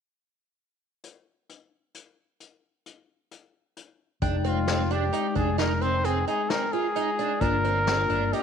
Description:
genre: progressive instrumental, band music in an uneven meter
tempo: 132 BPM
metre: 7/4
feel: straight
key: F dorian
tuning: A4 = 440 Hz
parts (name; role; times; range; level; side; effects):
- vintage brush drum kit; drums; 1.0-8.4 s; hi-hat, kick drum, snare drum; -33 LUFS; left 3 dB; none
- bell-like tine electric piano; accompaniment; 4.2-8.4 s; Ab3 to G5; -31 LUFS; left 12 dB; phaser
- fingerpicked twelve-string acoustic guitar; arpeggios; 4.2-8.4 s; C4 to F4; -30 LUFS; right 10 dB; none
- fretless electric bass; bass; 4.2-8.3 s; F1 to G1; -28 LUFS; right 1 dB; none
- warm trumpet; melody; 4.5-8.4 s; F4 to C5; -27 LUFS; left 1 dB; none
room: moderate echo chamber reverb, RT60 1.8 s, studio reverb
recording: 1960s-style stereo with parts hard left and right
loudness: -23 LUFS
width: side -7 dB against mid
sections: 1.0-4.2 A section; 4.2-8.4 B section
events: none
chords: 1.0 N.C.; 4.2 Fm7; 7.4 Gm7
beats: | 1.03 1.48 1.94 2.40 2.85 3.31 3.76 | 4.22 4.67 5.13 5.59 6.04 6.50 6.96 | 7.41 7.87 8.33

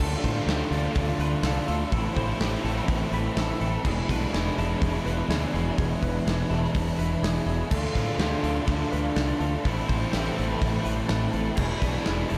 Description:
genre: rock, shoegaze and dream pop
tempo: 124 BPM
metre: 4/4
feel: straight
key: A harmonic minor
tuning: A4 = 441 Hz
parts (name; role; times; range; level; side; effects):
- direct-recorded clean electric guitar; arpeggios; 0.0-12.4 s; G4 to A5; -38 LUFS; equal; analog chorus, tape echo
- overdriven electric guitar; riff; 0.0-12.4 s; E2 to F4; -33 LUFS; equal; ensemble chorus
- overdriven electric guitar; riff; 0.0-12.4 s; E2 to F4; -32 LUFS; equal; reverse reverb
- growling fingered electric bass; bass; 0.0-12.4 s; E1 to A2; -32 LUFS; equal; overdrive
- gated 80s drum kit; drums; 0.0-12.4 s; crash cymbal, hi-hat, kick drum, snare drum; -32 LUFS; equal; none
room: wet huge ambient reverb, RT60 8.1 s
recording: dreamy mix soaked in reverb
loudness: -26 LUFS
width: mono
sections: 0.0-12.4 A section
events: none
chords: 0.0 Dm7; 1.9 Am7; 3.8 E7; 7.7 Dm7; 9.7 Am7; 11.6 E7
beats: 0.47 0.95 1.44 | 1.92 2.40 2.88 3.37 | 3.85 4.33 4.82 5.30 | 5.78 6.26 6.75 7.23 | 7.72 8.20 8.68 9.17 | 9.65 10.13 10.62 11.10 | 11.59 12.07

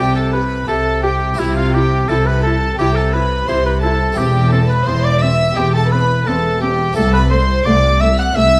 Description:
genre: classical, baroque-style concerto movement with solo episodes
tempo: 86 BPM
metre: 4/4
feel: straight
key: C major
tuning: A4 = 440 Hz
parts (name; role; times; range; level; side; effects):
- rich chamber violin section; melody; 0.0-8.6 s; E5 to F#6; -28 LUFS; equal; none
- warm oboe; melody; 0.0-8.6 s; E4 to F#5; -21 LUFS; equal; none
- rich chamber violin section; second line; 0.0-8.6 s; E4 to F#5; -25 LUFS; equal; none
- harpsichord; accompaniment; 0.0-8.6 s; C2 to A4; -29 LUFS; equal; none
- warm chamber viola section; accompaniment; 0.0-8.4 s; A3 to G4; -26 LUFS; equal; none
- dark chamber double bass section; bass; 0.0-8.6 s; E1 to C2; -20 LUFS; equal; none
- warm symphonic cello section; bass; 0.0-8.6 s; C2 to C3; -24 LUFS; equal; none
room: moderate recital hall reverb, RT60 1.3 s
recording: dark, warm production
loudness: -15 LUFS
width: mono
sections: 0.0-8.6 A section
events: none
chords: 0.0 G/C; 1.4 C; 4.2 C/E; 7.0 Am/C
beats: 0.68 | 1.38 2.09 2.79 3.48 | 4.18 4.88 5.58 6.28 | 6.97 7.67 8.37

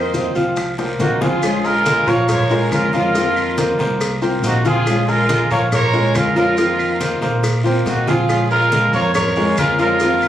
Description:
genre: latin, Cuban son and guajira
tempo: 140 BPM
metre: 4/4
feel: straight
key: Bb minor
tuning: A4 = 440 Hz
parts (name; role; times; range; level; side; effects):
- growling trumpet; melody; 0.0-10.3 s; Gb4 to Eb5; -19 LUFS; right 2 dB; none
- rich chamber violin section; second line; 0.0-10.3 s; Eb4 to C5; -25 LUFS; equal; none
- flamenco guitar; accompaniment; 0.0-10.3 s; Eb3 to F4; -23 LUFS; left 5 dB; none
- clear grand piano; arpeggios; 0.0-10.3 s; F3 to F5; -20 LUFS; right 2 dB; none
- upright bass; bass; 0.0-10.3 s; Bb1 to Bb2; -22 LUFS; right 1 dB; none
- bongos and cowbell; percussion; 0.1-10.2 s; none; -29 LUFS; left 2 dB; none
- congas; percussion; 0.1-10.3 s; none; -26 LUFS; left 2 dB; none
- guiro; percussion; 0.1-10.3 s; none; -33 LUFS; left 1 dB; none
- maracas; percussion; 0.1-10.3 s; none; -34 LUFS; left 2 dB; none
- claves; percussion; 0.6-10.3 s; none; -30 LUFS; equal; none
room: moderate large studio reverb, RT60 0.9 s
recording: recorded on a phone in the room, club reverb, compression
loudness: -14 LUFS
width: side -11 dB against mid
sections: 0.0-1.4 A section; 1.4-10.3 B section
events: drum fill 0.8-1.4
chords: 0.0 F7sus4; 1.4 Bbm7; 3.1 F7sus4; 4.9 Bbm7; 6.6 F7sus4; 8.3 Bbm7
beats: 0.14 0.57 1.00 | 1.43 1.86 2.29 2.72 | 3.15 3.58 4.01 4.43 | 4.86 5.29 5.72 6.15 | 6.58 7.01 7.43 7.86 | 8.29 8.72 9.15 9.58 | 10.01

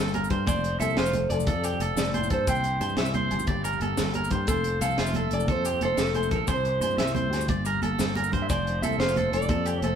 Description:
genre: highlife guitar band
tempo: 120 BPM (dotted quarters)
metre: 12/8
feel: straight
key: F major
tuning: A4 = 440 Hz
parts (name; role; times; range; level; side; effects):
- flamenco guitar; accompaniment; 0.0-10.0 s; F2 to A4; -34 LUFS; left 7 dB; none
- electric guitar at the edge of break-up; arpeggios; 0.0-10.0 s; F4 to E5; -30 LUFS; right 4 dB; spring reverb
- sustaining fretless electric bass; bass; 0.0-10.0 s; F1 to G2; -29 LUFS; left 1 dB; none
- tight funk drum kit; drums; 0.1-9.9 s; hi-hat, kick drum, snare drum; -30 LUFS; equal; none
- agogo bells; percussion; 0.1-10.0 s; none; -40 LUFS; left 2 dB; none
- congas; percussion; 0.1-9.9 s; none; -34 LUFS; right 5 dB; none
- maracas; percussion; 0.1-9.9 s; none; -40 LUFS; left 7 dB; none
- electric guitar at the edge of break-up; melody; 0.5-10.0 s; A4 to G5; -29 LUFS; equal; none
room: moderate studio reverb, RT60 0.8 s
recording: band playing live in one room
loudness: -23 LUFS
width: side -8 dB against mid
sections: 0.0-10.0 A section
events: none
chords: 0.5 F; 2.5 C; 3.5 Gm; 4.5 F; 6.5 C; 7.5 Gm; 8.5 F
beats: | 0.48 0.98 1.48 1.98 | 2.48 2.98 3.48 3.98 | 4.48 4.98 5.48 5.98 | 6.49 6.99 7.49 7.99 | 8.49 8.99 9.49

